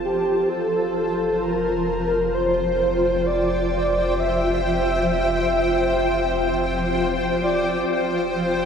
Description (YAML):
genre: ambient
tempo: free time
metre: none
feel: none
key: F major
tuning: A4 = 440 Hz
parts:
  - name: breathy flute-like synth lead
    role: melody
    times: 0.0-7.9 s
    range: G4 to E5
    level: -23 LUFS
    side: equal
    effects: ensemble chorus, cassette tape, diffuse ambient delay
  - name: granular cloud pad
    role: sustained chords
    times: 0.0-8.7 s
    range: F4 to A5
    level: -22 LUFS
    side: left 1 dB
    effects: built-in reverb
  - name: warm sub bass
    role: bass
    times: 0.0-8.7 s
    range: F1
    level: -31 LUFS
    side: equal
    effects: none
  - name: bowed-like drone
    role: drone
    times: 0.0-8.7 s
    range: F3 to F4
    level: -32 LUFS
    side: left 1 dB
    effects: none
room: wet cathedral reverb, RT60 6.5 s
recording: lossy compression artefacts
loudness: -19 LUFS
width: side -7 dB against mid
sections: 0.0-8.7 A section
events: fade-in on sub bass 0.0-8.7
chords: 0.0 F